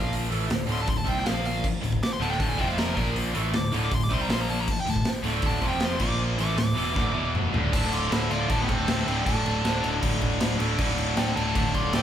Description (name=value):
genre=hard rock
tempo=157 BPM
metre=4/4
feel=straight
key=D minor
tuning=A4 = 438 Hz
part: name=nasal lead guitar with a parked wah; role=melody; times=0.0-12.0 s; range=B3 to D6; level=-31 LUFS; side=equal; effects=overdrive
part: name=distorted electric guitar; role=riff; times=0.0-12.0 s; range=D2 to C4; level=-31 LUFS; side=right 4 dB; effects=overdrive
part: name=scooped high-gain guitar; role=riff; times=0.0-12.0 s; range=D2 to C4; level=-33 LUFS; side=left 7 dB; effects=distortion
part: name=modern bright picked electric bass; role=bass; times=0.0-12.0 s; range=D1 to C2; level=-30 LUFS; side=equal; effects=none
part: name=big rock drum kit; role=drums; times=0.1-12.0 s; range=crash cymbal, hi-hat, kick drum, snare drum, toms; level=-28 LUFS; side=equal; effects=none
part: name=distorted electric guitar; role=riff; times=1.8-12.0 s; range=D2 to C4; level=-30 LUFS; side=left 1 dB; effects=distortion
part: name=octave-fuzz lead guitar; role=second line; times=7.7-12.0 s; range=G4 to D5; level=-35 LUFS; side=right 1 dB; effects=none
room=moderate large studio reverb, RT60 1.2 s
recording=band playing live in one room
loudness=-23 LUFS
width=side -10 dB against mid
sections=0.0-7.7 A section; 7.7-12.0 B section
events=lead electric guitar solo 0.0-7.7; drum fill 7.0-7.7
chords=0.3 D5; 1.3 Bb5; 1.8 D5; 2.6 F5; 3.0 Bb5; 3.3 D5; 4.3 Bb5; 4.9 D5; 5.6 F5; 6.0 Bb5; 6.4 D5; 7.2 E5; 7.5 D5